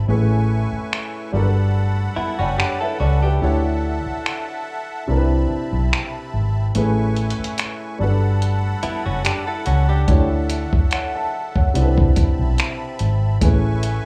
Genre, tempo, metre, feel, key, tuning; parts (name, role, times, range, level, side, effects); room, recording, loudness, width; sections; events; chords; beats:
contemporary R&B; 72 BPM; 4/4; swing 54% on 16ths; D major; A4 = 440 Hz
dark grand piano; accompaniment; 0.0-14.1 s; A2 to B5; -27 LUFS; equal
musette accordion; sustained chords; 0.0-14.1 s; C4 to C#6; -32 LUFS; equal; sidechain pumping
vintage muted fingered electric bass; bass; 0.0-14.0 s; F#1 to D2; -21 LUFS; equal
dusty soul sampler-style drum kit; drums; 0.9-14.0 s; finger snaps, hi-hat, kick drum; -22 LUFS; equal; vintage 12-bit sampler grit
direct-recorded clean electric guitar; arpeggios; 2.2-3.6, 8.8-10.3 s; B3 to A4; -29 LUFS; equal; digital delay
little or no reverb; rough home demo mix, small room reverb; -20 LUFS; mono
0.0-14.1 A section
break 0.0-10.1
0.1 Amaj9; 1.3 Gmaj9; 3.4 Dmaj9; 5.1 Cmaj9; 6.7 Amaj9; 8.0 Gmaj9; 10.1 Dmaj9; 11.7 Cmaj9; 13.4 Amaj9
| 0.08 0.92 1.75 2.58 | 3.42 4.25 5.08 5.92 | 6.75 7.58 8.41 9.25 | 10.08 10.91 11.75 12.58 | 13.41